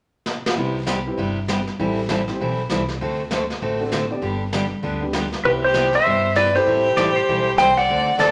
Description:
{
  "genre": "country, western swing",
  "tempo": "197 BPM",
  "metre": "4/4",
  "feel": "swing 63% on 8ths",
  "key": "C major",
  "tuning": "A4 = 440 Hz",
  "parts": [
    { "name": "jazz brush drum kit", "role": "drums", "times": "0.3-8.3 s", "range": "brushed snare drum, hi-hat, snare drum", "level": "-30 LUFS", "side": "equal", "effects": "none" },
    { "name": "picked steel-string acoustic guitar", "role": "accompaniment", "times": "0.6-8.3 s", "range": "C3 to A4", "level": "-26 LUFS", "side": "equal", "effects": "none" },
    { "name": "warm upright piano", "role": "accompaniment", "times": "0.6-7.0 s", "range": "B3 to D5", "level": "-31 LUFS", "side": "equal", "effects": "none" },
    { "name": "upright bass", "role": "bass", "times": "0.6-8.3 s", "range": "G1 to G2", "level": "-32 LUFS", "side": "equal", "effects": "none" },
    { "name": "clean lap steel guitar", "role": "melody", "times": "5.5-8.3 s", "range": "B4 to G5", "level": "-20 LUFS", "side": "equal", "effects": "none" },
    { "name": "clear fiddle", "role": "second line", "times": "5.5-8.3 s", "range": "G4 to D5", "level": "-25 LUFS", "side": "equal", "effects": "none" },
    { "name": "pedal steel guitar", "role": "second line", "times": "7.0-7.5 s", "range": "C5 to D5", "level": "-26 LUFS", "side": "equal", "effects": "none" }
  ],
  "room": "wet large studio reverb, RT60 0.7 s",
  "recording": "none",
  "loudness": "-20 LUFS",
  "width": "mono",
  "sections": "0.6-5.4 A section; 5.4-8.3 B section",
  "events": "drum fill 0.3-0.6",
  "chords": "0.0 N.C.; 0.6 Cmaj7; 1.8 Am7; 3.0 D7; 4.2 G; 5.4 Cmaj7; 6.7 Am7"
}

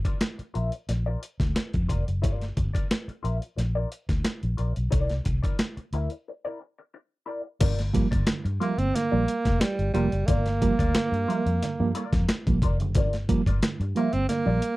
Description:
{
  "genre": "funk",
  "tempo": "90 BPM",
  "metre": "4/4",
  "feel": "straight",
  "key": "G dorian",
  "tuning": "A4 = 440 Hz",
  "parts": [
    { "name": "mellow electric guitar", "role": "accompaniment", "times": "0.0-14.7 s", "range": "E4 to E5", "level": "-34 LUFS", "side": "left 4 dB", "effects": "wah, analog chorus" },
    { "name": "breakbeat sampler-style drum kit", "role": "drums", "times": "0.0-14.8 s", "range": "crash cymbal, hi-hat, kick drum, snare drum", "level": "-26 LUFS", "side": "equal", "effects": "overdrive" },
    { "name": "vintage muted fingered electric bass", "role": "bass", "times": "0.4-14.6 s", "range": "F1 to G2", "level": "-27 LUFS", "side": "equal", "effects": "none" },
    { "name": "mellow reed electric piano", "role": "stabs", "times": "7.6-14.7 s", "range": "G2 to Bb3", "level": "-28 LUFS", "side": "right 4 dB", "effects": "fast tremolo" },
    { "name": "breathy alto saxophone", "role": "melody", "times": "8.6-14.8 s", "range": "G3 to C4", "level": "-27 LUFS", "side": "right 3 dB", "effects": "none" }
  ],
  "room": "little or no reverb",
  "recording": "dry, close 1970s-style studio recording",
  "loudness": "-23 LUFS",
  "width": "side -18 dB against mid",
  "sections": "0.0-7.6 A section; 7.6-14.8 B section",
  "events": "break 6.3-7.6",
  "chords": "0.0 Gm7 (rootless); 4.9 C9; 7.6 Gm7"
}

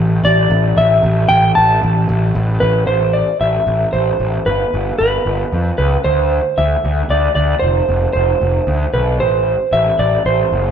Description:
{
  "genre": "post-rock",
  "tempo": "114 BPM",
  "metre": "3/4",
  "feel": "straight",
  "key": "A minor",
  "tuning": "A4 = 440 Hz",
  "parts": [
    { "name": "fuzz picked electric bass", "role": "bass", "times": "0.0-10.7 s", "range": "F1 to F2", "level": "-16 LUFS", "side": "equal", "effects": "overdrive" },
    { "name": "clean lap steel guitar", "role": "melody", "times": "0.2-10.7 s", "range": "B4 to A5", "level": "-15 LUFS", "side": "right 1 dB", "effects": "none" }
  ],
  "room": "wet large studio reverb, RT60 1.4 s",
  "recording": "band playing live in one room",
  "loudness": "-12 LUFS",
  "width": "side -8 dB against mid",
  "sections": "0.0-2.9 A section; 2.9-10.7 B section",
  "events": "none",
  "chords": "0.0 N.C.; 2.9 Am; 4.5 G; 6.1 Cadd9/D; 7.6 F5; 9.2 Am"
}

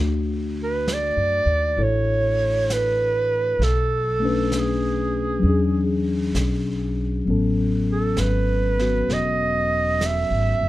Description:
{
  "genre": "jazz ballad",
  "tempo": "66 BPM",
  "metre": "4/4",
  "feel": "swing 67% on 8ths",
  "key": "unclear",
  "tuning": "A4 = 439 Hz",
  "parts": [
    { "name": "mellow tine electric piano", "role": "accompaniment", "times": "0.0-10.7 s", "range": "F#3 to C#5", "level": "-25 LUFS", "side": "left 3 dB", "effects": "none" },
    { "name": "upright bass", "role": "bass", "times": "0.0-10.7 s", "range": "E1 to F#2", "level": "-24 LUFS", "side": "equal", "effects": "none" },
    { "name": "warm clarinet", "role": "melody", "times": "0.6-10.7 s", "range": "G#4 to E5", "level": "-22 LUFS", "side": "right 2 dB", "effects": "none" },
    { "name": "vintage brush drum kit", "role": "drums", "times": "0.9-10.7 s", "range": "brushed snare drum, hi-hat, snare drum", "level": "-34 LUFS", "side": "right 2 dB", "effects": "none" }
  ],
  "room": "light reverb",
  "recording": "dark, warm production",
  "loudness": "-19 LUFS",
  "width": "side -16 dB against mid",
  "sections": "0.0-10.7 A section",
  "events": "none",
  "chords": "0.0 Dmaj7; 3.6 Bm9; 5.4 E13; 7.3 Amaj13"
}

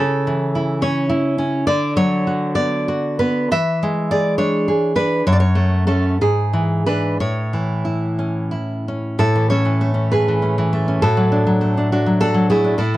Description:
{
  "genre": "romantic piece for solo classical guitar",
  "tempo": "58-72 BPM (dotted quarters)",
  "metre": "6/8",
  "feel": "rubato",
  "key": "A major",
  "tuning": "A4 = 440 Hz",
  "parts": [
    { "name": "nylon-string guitar", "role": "solo", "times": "0.0-13.0 s", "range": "F#2 to E5", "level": "-16 LUFS", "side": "equal", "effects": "none" }
  ],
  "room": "light reverb",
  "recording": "dry, close 1970s-style studio recording",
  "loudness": "-16 LUFS",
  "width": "side -16 dB against mid",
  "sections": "0.0-9.2 A section; 9.2-13.0 A section",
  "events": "none",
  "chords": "0.0 A/C#; 1.7 Bm/D; 3.5 E7; 5.3 F#m; 6.2 E7/G#; 7.2 A; 11.0 D/A"
}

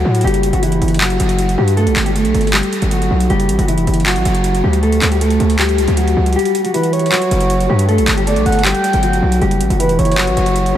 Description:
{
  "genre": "hip hop, trap",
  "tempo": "157 BPM",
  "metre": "4/4",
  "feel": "half-time",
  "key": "F# phrygian",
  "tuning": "A4 = 437 Hz",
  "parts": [
    { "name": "mellow electric guitar", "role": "melody", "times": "0.0-10.8 s", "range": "E3 to A4", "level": "-16 LUFS", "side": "left 1 dB", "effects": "wide subtle chorus, low-pass filter, diffuse ambient delay" },
    { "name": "distorted 808-style bass", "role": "bass", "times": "0.0-10.8 s", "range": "E1 to A2", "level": "-16 LUFS", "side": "equal", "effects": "distortion" },
    { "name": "trap drum kit", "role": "drums", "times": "0.1-10.7 s", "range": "handclaps, hi-hat", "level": "-21 LUFS", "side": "equal", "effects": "none" },
    { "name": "breathy flute-like synth lead", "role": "second line", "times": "6.7-10.8 s", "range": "B4 to G5", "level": "-19 LUFS", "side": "right 3 dB", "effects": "chorus, diffuse ambient delay" }
  ],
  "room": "moderate huge ambient reverb, RT60 3.8 s",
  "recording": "dreamy mix soaked in reverb",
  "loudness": "-12 LUFS",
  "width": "side -11 dB against mid",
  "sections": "0.0-10.8 A section",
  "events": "kick muted 6.4-7.1",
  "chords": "0.2 Emadd9/F#; 1.8 G; 3.3 N.C.; 4.8 D; 6.4 F#5; 7.9 G; 9.4 F#m"
}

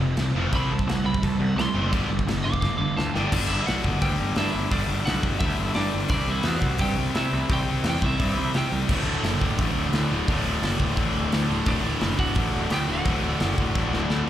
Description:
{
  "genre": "punk rock",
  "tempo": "173 BPM",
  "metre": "4/4",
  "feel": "straight",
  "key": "unclear",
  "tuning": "A4 = 440 Hz",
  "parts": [
    { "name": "distorted electric guitar", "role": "riff", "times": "0.0-14.3 s", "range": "D2 to C4", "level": "-28 LUFS", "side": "left 6 dB", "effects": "overdrive, slapback echo" },
    { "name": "distorted electric guitar", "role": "riff", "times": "0.0-3.3, 8.9-14.3 s", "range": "D2 to C4", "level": "-30 LUFS", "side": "right 9 dB", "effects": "overdrive, slapback echo" },
    { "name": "distorted electric guitar", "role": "riff", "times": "0.0-14.3 s", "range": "D2 to C4", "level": "-35 LUFS", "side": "right 2 dB", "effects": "overdrive, slapback echo" },
    { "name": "fuzz picked electric bass", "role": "bass", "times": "0.0-14.2 s", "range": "D1 to C3", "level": "-26 LUFS", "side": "equal", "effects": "overdrive" },
    { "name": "big rock drum kit", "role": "drums", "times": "0.2-14.2 s", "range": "crash cymbal, hi-hat, kick drum, snare drum", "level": "-27 LUFS", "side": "equal", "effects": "none" },
    { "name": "lightly driven lead guitar", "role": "melody", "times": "0.6-8.8, 11.7-14.1 s", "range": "D4 to D6", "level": "-30 LUFS", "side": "right 2 dB", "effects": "none" }
  ],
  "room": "little or no reverb",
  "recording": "live gig heard through the venue's PA, club reverb",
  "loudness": "-22 LUFS",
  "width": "side -12 dB against mid",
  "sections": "0.0-3.3 A section; 3.3-14.3 B section",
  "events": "lead electric guitar solo 0.0-3.3; drum fill 2.6-3.3, 13.7-14.3",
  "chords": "0.0 F5; 0.5 C5; 1.9 G5; 6.1 C; 8.9 D"
}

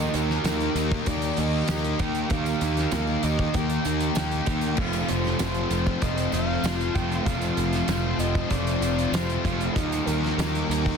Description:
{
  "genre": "rock, shoegaze and dream pop",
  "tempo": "97 BPM",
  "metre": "4/4",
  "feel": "straight",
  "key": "unclear",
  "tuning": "A4 = 435 Hz",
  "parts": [
    { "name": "breathy flute-like synth lead", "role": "melody", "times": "0.0-11.0 s", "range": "Bb4 to G5", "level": "-33 LUFS", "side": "right 3 dB", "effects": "chorus, slapback echo" },
    { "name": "sweeping resonant pad", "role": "sustained chords", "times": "0.0-11.0 s", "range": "Eb4 to D6", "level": "-37 LUFS", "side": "equal", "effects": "none" },
    { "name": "electric guitar through a small old amp", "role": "arpeggios", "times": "0.0-11.0 s", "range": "Eb3 to G4", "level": "-35 LUFS", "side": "left 6 dB", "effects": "lush chorus, slapback echo" },
    { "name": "biting overdriven guitar", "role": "riff", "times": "0.0-11.0 s", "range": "F2 to G4", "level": "-31 LUFS", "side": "left 12 dB", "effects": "wide subtle chorus" },
    { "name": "overdriven semi-hollow guitar", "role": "riff", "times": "0.0-11.0 s", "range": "Eb3 to G4", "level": "-31 LUFS", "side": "right 11 dB", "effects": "reverse reverb" },
    { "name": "tight distorted guitar", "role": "riff", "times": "0.0-11.0 s", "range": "Eb3 to G4", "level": "-32 LUFS", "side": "left 2 dB", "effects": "distortion" },
    { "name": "fuzz picked electric bass", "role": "bass", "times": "0.0-10.9 s", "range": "F1 to Eb2", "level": "-28 LUFS", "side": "equal", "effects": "overdrive" },
    { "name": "tambourine", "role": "percussion", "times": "0.0-10.9 s", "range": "none", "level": "-44 LUFS", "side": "right 17 dB", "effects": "none" },
    { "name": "loose indie drum kit", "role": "drums", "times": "0.1-11.0 s", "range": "crash cymbal, hi-hat, kick drum, snare drum", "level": "-30 LUFS", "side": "equal", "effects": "soft clipping on kick" }
  ],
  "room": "studio ambience",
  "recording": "dense, heavily limited modern master",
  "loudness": "-22 LUFS",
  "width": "side -6 dB against mid",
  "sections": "0.0-11.0 A section",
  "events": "none",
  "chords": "0.0 Ebmaj7; 4.8 F; 9.8 Ebmaj7"
}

